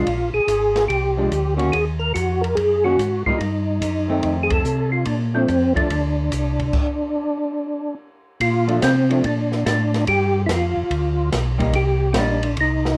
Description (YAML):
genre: soul jazz organ trio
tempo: 144 BPM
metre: 4/4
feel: swing 67% on 8ths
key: Bb major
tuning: A4 = 440 Hz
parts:
  - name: percussive tonewheel organ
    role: melody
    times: 0.0-13.0 s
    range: C4 to Bb4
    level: -23 LUFS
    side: equal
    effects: chorus vibrato, slow rotary speaker
  - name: vintage hollow-body jazz guitar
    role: accompaniment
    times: 0.0-5.9, 8.7-12.4 s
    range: Eb3 to Gb4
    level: -27 LUFS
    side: equal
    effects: none
  - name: mellow tonewheel organ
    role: bass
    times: 0.0-13.0 s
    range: Ab1 to C3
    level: -25 LUFS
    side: equal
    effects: chorus vibrato, slow rotary speaker
  - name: open jazz drum kit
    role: drums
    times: 0.1-12.9 s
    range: crash cymbal, hi-hat, kick drum, ride cymbal, snare drum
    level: -30 LUFS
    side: equal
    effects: none
room: moderate small room reverb, RT60 0.5 s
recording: worn, warbling old tape, cassette tape, warbly pitch drift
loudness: -20 LUFS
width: mono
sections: 0.0-8.4 A section; 8.4-13.0 B section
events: band accent 4.4; stop 6.7-8.4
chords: 0.1 Bb7; 1.7 Ebm; 3.4 Cm; 4.2 F7; 5.1 Bb; 8.4 Bbmaj7; 10.1 G7; 11.7 Cm7